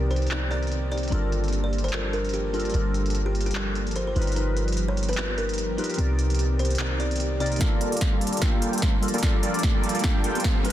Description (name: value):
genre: future bass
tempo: 148 BPM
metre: 4/4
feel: swing 56% on 16ths, half-time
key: G minor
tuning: A4 = 440 Hz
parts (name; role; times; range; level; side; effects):
- glassy digital keys; accompaniment; 0.0-10.7 s; C3 to D5; -31 LUFS; left 2 dB; chorus, sidechain pumping, dub echo
- ethereal airy pad; sustained chords; 0.0-10.7 s; Eb3 to G4; -35 LUFS; right 1 dB; ensemble chorus, built-in reverb, sidechain pumping
- warm 808-style bass; bass; 0.0-10.7 s; G1 to G2; -26 LUFS; equal; sidechain pumping, high-pass filter
- buzzing kalimba; melody; 0.1-7.6 s; G4 to D5; -32 LUFS; equal; sidechain pumping, digital delay
- big-room dance drum kit; drums; 0.1-10.7 s; handclaps, hi-hat, snare drum; -31 LUFS; equal; low-pass filter on hats, soft clipping on snare, low-pass filter on snare, low-pass filter on room
- supersaw chords; riff; 7.6-10.6 s; G3 to G5; -28 LUFS; right 1 dB; sidechain pumping, low-pass filter, dub echo
- electronic kick drum; drums; 7.6-10.5 s; none; -23 LUFS; equal; none
- riser; sound effects; 8.4-10.7 s; none; -38 LUFS; right 1 dB; none
room: little or no reverb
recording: dense, heavily limited modern master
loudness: -22 LUFS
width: side -12 dB against mid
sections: 0.0-7.6 A section; 7.6-10.7 B section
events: build-up 7.6-10.7; drum fill 7.6-10.7; filter sweep on supersaw synth 7.6-10.7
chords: 0.0 Cm7; 1.1 Gm9; 4.2 G7alt; 6.0 Cm7; 7.6 Gm9